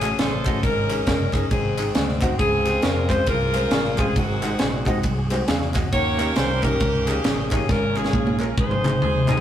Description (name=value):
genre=uptempo gospel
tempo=136 BPM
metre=4/4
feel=swing 60% on 8ths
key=Db major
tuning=A4 = 438 Hz
part: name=bright saxophone section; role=melody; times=0.0-9.4 s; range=C4 to Db5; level=-24 LUFS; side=left 1 dB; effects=tape echo
part: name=warm concert grand piano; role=accompaniment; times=0.0-9.4 s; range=Ab2 to F5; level=-28 LUFS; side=left 1 dB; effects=none
part: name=fingered electric bass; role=bass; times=0.0-9.4 s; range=Gb1 to F2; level=-27 LUFS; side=equal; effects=none
part: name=crisp fusion drum kit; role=drums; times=0.0-9.4 s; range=kick drum, ride cymbal, snare drum, toms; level=-23 LUFS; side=equal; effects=none
part: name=group handclap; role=percussion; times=0.0-9.4 s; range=none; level=-36 LUFS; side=right 2 dB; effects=none
part: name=tonewheel organ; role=sustained chords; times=2.4-9.4 s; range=Eb3 to G5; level=-34 LUFS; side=right 1 dB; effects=none
room=wet stone room reverb, RT60 0.9 s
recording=rough rehearsal-room recording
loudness=-19 LUFS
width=side -10 dB against mid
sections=0.0-9.4 A section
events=drum fill 7.7-9.4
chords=0.0 Gbmadd9; 0.6 Absus4; 1.5 Ab; 2.4 Dbmaj7; 4.2 Ab7; 5.9 Eb7; 7.7 Db/Ab; 8.6 Ab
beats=0.19 | 0.63 1.07 1.51 1.95 | 2.40 2.84 3.28 3.72 | 4.16 4.60 5.04 5.48 | 5.93 6.37 6.81 7.25 | 7.69 8.14 8.58 9.02